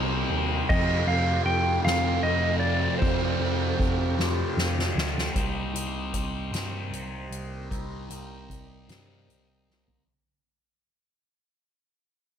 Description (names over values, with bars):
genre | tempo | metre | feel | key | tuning
psychedelic rock | 51 BPM (dotted quarters) | 6/8 | straight | C dorian | A4 = 440 Hz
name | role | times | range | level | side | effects
clean lap steel guitar | melody | 0.0-4.5 s | C5 to G5 | -28 LUFS | right 1 dB | analog delay
overdriven combo organ | sustained chords | 0.0-10.0 s | A3 to D5 | -38 LUFS | right 3 dB | phaser
thick fuzz guitar | riff | 0.0-10.1 s | F2 to C4 | -31 LUFS | left 2 dB | distortion, phaser
bell-like tine electric piano | bass | 0.0-10.1 s | C2 to G2 | -30 LUFS | equal | phaser
soft-mallet drum kit | drums | 0.3-10.1 s | hi-hat, kick drum, ride cymbal, snare drum, toms | -29 LUFS | right 1 dB | none
room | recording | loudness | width
light reverb, small room reverb | none | -24 LUFS | side -8 dB against mid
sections
0.0-5.4 A section; 5.4-10.1 B section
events
drum fill 4.2-5.4, 9.7-10.1; fade-out 5.4-10.1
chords
0.0 Cm7; 0.7 Fadd9; 5.4 Cm7